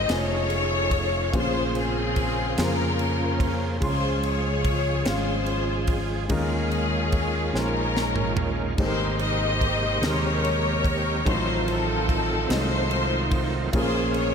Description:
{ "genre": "slow gospel", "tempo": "48 BPM (dotted quarters)", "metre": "6/8", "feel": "straight", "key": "Ab major", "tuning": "A4 = 440 Hz", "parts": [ { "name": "rich studio string section", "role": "melody", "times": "0.0-14.3 s", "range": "C4 to Eb5", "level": "-26 LUFS", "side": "left 3 dB", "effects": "none" }, { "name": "warm upright piano", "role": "accompaniment", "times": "0.0-14.3 s", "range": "Ab2 to C6", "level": "-30 LUFS", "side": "left 1 dB", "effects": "none" }, { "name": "bright tonewheel organ", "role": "sustained chords", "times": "0.0-14.3 s", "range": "C3 to C5", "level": "-31 LUFS", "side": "right 3 dB", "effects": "slow rotary speaker, overdrive, chorus vibrato" }, { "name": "fingered electric bass", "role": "bass", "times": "0.0-14.3 s", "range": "F1 to F2", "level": "-28 LUFS", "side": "equal", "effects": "none" }, { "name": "tight funk drum kit", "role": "drums", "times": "0.1-14.3 s", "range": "crash cymbal, kick drum, ride cymbal, snare drum, toms", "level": "-30 LUFS", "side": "right 1 dB", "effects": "none" } ], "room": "wet concert hall reverb, RT60 2.5 s", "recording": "none", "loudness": "-22 LUFS", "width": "side -6 dB against mid", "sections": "0.0-14.3 A section", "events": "drum fill 7.5-8.8", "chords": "0.1 F7alt; 1.3 Bbm9; 3.8 Dbmaj7; 6.3 Eb9sus4; 8.8 Abmaj9; 11.3 F7b9/A; 13.7 Bbm7" }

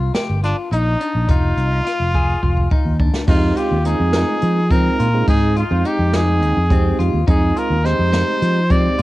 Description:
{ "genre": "progressive instrumental, band music in an uneven meter", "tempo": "211 BPM (eighths)", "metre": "7/8", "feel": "straight", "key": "F dorian", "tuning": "A4 = 440 Hz", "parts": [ { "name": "clean electric guitar", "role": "arpeggios", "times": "0.0-9.0 s", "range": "C4 to Ab4", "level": "-24 LUFS", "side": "left 6 dB", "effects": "cassette tape" }, { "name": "fingered electric bass", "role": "bass", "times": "0.0-9.0 s", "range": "F1 to F3", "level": "-18 LUFS", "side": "equal", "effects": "none" }, { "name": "jazz brush drum kit", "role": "drums", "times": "0.1-9.0 s", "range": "crash cymbal, hi-hat, kick drum, snare drum", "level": "-19 LUFS", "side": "equal", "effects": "none" }, { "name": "bright trumpet", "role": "melody", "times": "0.4-9.0 s", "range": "D4 to D5", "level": "-22 LUFS", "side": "equal", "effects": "cassette tape" }, { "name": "percussive tonewheel organ", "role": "accompaniment", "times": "3.3-9.0 s", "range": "Ab3 to G5", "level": "-24 LUFS", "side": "right 7 dB", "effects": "chorus vibrato, slow rotary speaker, cassette tape" } ], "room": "light reverb, small room ambience", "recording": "home recording on cassette", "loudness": "-14 LUFS", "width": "side -17 dB against mid", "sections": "0.0-3.3 A section; 3.3-9.0 B section", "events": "drum fill 2.1-3.3", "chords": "0.0 Eb; 1.3 Fm7" }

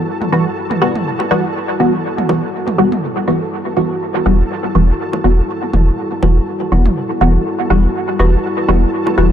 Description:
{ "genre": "dub techno", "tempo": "122 BPM", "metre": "4/4", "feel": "swing 56% on 16ths", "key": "E minor", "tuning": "A4 = 440 Hz", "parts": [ { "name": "dark analog pad", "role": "sustained chords", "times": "0.0-9.3 s", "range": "G3 to F#4", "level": "-22 LUFS", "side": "left 1 dB", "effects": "lush chorus" }, { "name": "flickering grainy texture", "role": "texture", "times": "0.0-9.3 s", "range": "A4", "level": "-28 LUFS", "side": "right 2 dB", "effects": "built-in reverb" }, { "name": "electronic toms and bongos", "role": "percussion", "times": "0.2-9.2 s", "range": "none", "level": "-24 LUFS", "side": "right 2 dB", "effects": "overdrive, dub echo" }, { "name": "filtered dub chord stab", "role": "stabs", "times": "0.3-9.3 s", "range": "E3 to F#4", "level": "-16 LUFS", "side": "equal", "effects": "chorus, phaser, dub echo" }, { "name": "warm sub bass", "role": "bass", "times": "4.3-9.3 s", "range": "E1", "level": "-12 LUFS", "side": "equal", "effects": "none" } ], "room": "light reverb", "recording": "dark, warm production", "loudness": "-13 LUFS", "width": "side -9 dB against mid", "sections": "0.0-4.0 A section; 4.0-9.3 B section", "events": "none", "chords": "0.0 Emadd9" }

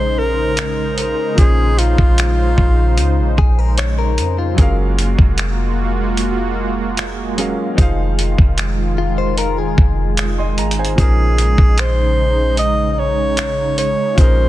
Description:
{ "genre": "contemporary R&B", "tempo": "75 BPM", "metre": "4/4", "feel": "straight", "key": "Bb minor", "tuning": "A4 = 440 Hz", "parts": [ { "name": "breathy alto saxophone", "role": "melody", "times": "0.0-3.4, 11.0-14.5 s", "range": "F4 to Eb5", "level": "-19 LUFS", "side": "equal", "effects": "digital delay" }, { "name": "clear concert grand piano", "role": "accompaniment", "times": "0.0-14.5 s", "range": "Bb2 to Eb6", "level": "-26 LUFS", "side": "equal", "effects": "none" }, { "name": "warm analog pad", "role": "sustained chords", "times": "0.0-14.5 s", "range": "Db3 to C5", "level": "-22 LUFS", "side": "right 1 dB", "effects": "chorus, tremolo, sidechain pumping" }, { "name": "warm 808-style bass", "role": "bass", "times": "0.0-14.5 s", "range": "F1 to F2", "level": "-17 LUFS", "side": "equal", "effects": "none" }, { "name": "dusty soul sampler-style drum kit", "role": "drums", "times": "0.6-14.4 s", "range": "finger snaps, hi-hat, kick drum", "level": "-15 LUFS", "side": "equal", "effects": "vintage 12-bit sampler grit, soft clipping on snare" }, { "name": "direct-recorded clean electric guitar", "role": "arpeggios", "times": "3.4-10.7 s", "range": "F4 to Db5", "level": "-24 LUFS", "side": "left 9 dB", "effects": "spring reverb, digital delay" } ], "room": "little or no reverb", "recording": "dense, heavily limited modern master", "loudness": "-13 LUFS", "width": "side -15 dB against mid", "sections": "0.0-14.5 A section", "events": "none", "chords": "0.0 Bbm11; 4.6 Gbmaj9; 7.8 Fm7; 11.0 Bbm11" }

